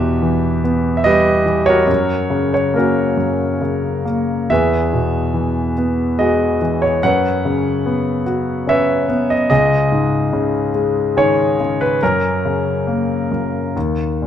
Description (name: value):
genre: classical, lyrical solo piano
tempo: 71 BPM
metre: 3/4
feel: rubato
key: unclear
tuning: A4 = 439 Hz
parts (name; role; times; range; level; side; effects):
- clear concert grand piano; solo; 0.0-14.3 s; C#2 to F#5; -14 LUFS; equal; none
room: moderate recital hall reverb, RT60 1.6 s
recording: dark, warm production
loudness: -14 LUFS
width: side -9 dB against mid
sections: 0.0-14.3 A section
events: none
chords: 0.0 Em; 1.9 F#; 4.5 Eadd9; 7.0 F#sus4; 9.5 C#sus2; 12.0 F#; 13.8 D#5